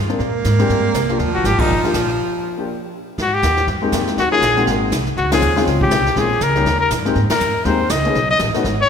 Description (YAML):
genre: jazz, small-group swing and bop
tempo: 242 BPM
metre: 4/4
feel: swing 58% on 8ths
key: Eb major, Ab major from 3.2 s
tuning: A4 = 440 Hz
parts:
  - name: upright bass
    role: bass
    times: 0.0-8.9 s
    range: G1 to Bb2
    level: -21 LUFS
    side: right 1 dB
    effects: none
  - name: warm upright piano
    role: accompaniment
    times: 0.1-8.6 s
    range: Gb3 to Bb4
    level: -21 LUFS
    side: left 4 dB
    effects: none
  - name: jazz brush drum kit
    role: drums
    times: 0.1-8.9 s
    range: brushed snare drum, hi-hat, kick drum, ride cymbal, snare drum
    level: -24 LUFS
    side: equal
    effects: none
  - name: clear baritone saxophone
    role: second line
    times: 0.2-3.1 s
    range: F3 to Bb3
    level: -21 LUFS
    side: right 3 dB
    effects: none
  - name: bright trumpet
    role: melody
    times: 1.3-8.9 s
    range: Eb4 to Eb5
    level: -18 LUFS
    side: left 2 dB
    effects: none
room: wet concert hall reverb, RT60 2.1 s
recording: recorded in a church or concert hall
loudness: -15 LUFS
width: side -7 dB against mid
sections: 0.0-3.2 A section; 3.2-8.9 B section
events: band accent 1.6, 5.3, 7.3; break 2.2-3.2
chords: 0.2 Bb13; 1.2 Ebmaj9 (rootless); 3.2 Abmaj7; 4.2 Ebm7; 4.7 Ab7; 5.2 Dbmaj7; 6.2 Bbm7; 6.7 Eb; 7.2 Abmaj7; 8.1 B7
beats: | 0.20 0.44 0.69 0.94 | 1.19 1.44 1.69 1.94 | 2.19 2.44 2.68 2.93 | 3.18 3.43 3.68 3.93 | 4.17 4.42 4.67 4.92 | 5.17 5.42 5.67 5.91 | 6.16 6.41 6.66 6.91 | 7.16 7.40 7.65 7.90 | 8.15 8.40 8.65